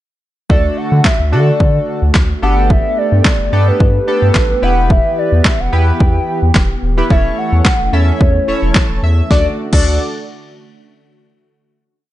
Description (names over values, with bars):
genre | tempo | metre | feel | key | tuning
dance-pop | 109 BPM | 4/4 | straight | D major | A4 = 440 Hz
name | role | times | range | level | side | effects
hollow clarinet-like synth lead | melody | 0.5-10.0 s | B4 to G5 | -19 LUFS | equal | chorus, tape echo
chorused retro synth keys | accompaniment | 0.5-10.0 s | A3 to A5 | -20 LUFS | equal | sidechain pumping
warm analog pad | sustained chords | 0.5-9.6 s | D3 to G4 | -24 LUFS | right 1 dB | chorus, sidechain pumping
round analog bass | bass | 0.5-10.0 s | Eb1 to D3 | -14 LUFS | equal | sidechain pumping
deep house drum kit | drums | 0.5-9.8 s | crash cymbal, handclaps, kick drum, snare drum | -12 LUFS | equal | none
room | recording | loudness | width
digital ambience | nothing above 10.4 kHz | -11 LUFS | side -14 dB against mid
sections
0.5-9.3 verse; 9.3-11.5 final chord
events
synth keys fill 8.5-9.3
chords
0.5 D; 2.4 Gadd9; 4.6 Em; 7.1 A/E; 9.3 D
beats
| 0.50 1.05 1.60 2.15 | 2.70 3.25 3.80 4.35 | 4.90 5.45 6.00 6.55 | 7.10 7.65 8.21 8.76 | 9.31 9.86